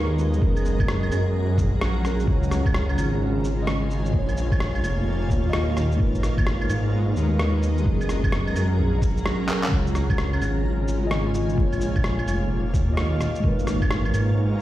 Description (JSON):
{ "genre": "future garage", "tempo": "129 BPM", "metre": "4/4", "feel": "swing 64% on 16ths", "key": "Bb phrygian", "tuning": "A4 = 439 Hz", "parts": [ { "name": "muted felt-like synth keys", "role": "accompaniment", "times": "0.0-14.6 s", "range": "Bb2 to Eb5", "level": "-28 LUFS", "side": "left 1 dB", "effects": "chorus, sidechain pumping, tape echo" }, { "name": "granular cloud pad", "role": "sustained chords", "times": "0.0-14.6 s", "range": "Bb2 to Bb5", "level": "-29 LUFS", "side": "right 1 dB", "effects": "built-in reverb, vintage 12-bit sampler grit, sidechain pumping" }, { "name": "swelling detuned saw bass", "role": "bass", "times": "0.0-14.6 s", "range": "F1 to Ab2", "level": "-24 LUFS", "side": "equal", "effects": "none" }, { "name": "electronic shaker, claves, rim click and handclaps", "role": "drums", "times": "0.2-14.3 s", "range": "none", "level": "-30 LUFS", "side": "right 1 dB", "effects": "overdrive" }, { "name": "electronic kick drum", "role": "drums", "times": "0.4-13.9 s", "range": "none", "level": "-23 LUFS", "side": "equal", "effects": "none" } ], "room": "light reverb, digital ambience", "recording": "played on a big sound system in a bare room, large studio reverb, vinyl crackle", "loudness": "-20 LUFS", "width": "side -14 dB against mid", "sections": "0.0-14.6 A section", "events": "kick drops out 9.3-9.7; drum fill 9.5", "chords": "0.4 Gbadd9; 2.3 Db; 4.1 Bbm; 6.0 Abmadd9; 7.9 Gbadd9; 9.7 Db; 11.6 Bbm; 13.4 Abmadd9", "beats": "| 0.41 0.88 1.34 1.81 | 2.27 2.74 3.21 3.67 | 4.13 4.60 5.07 5.53 | 6.00 6.46 6.92 7.39 | 7.86 8.32 8.79 9.25 | 9.72 10.18 10.65 11.11 | 11.58 12.04 12.51 12.97 | 13.44 13.90 14.37" }